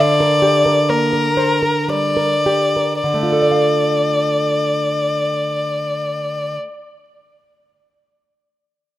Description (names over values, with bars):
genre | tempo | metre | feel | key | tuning
romantic duo for violin and classical guitar | 49-71 BPM | 3/4 | rubato | D minor | A4 = 444 Hz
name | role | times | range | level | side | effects
warm violin | melody | 0.0-6.6 s | Bb4 to D5 | -16 LUFS | left 2 dB | none
nylon-string guitar | accompaniment | 0.0-7.0 s | D3 to F5 | -19 LUFS | right 3 dB | none
room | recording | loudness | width
light reverb, small room ambience | rough home demo mix | -15 LUFS | side -14 dB against mid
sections
0.0-3.0 A section; 3.0-9.0 B section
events
slowing down 0.0-3.0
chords
0.0 Gm/D; 3.0 Dm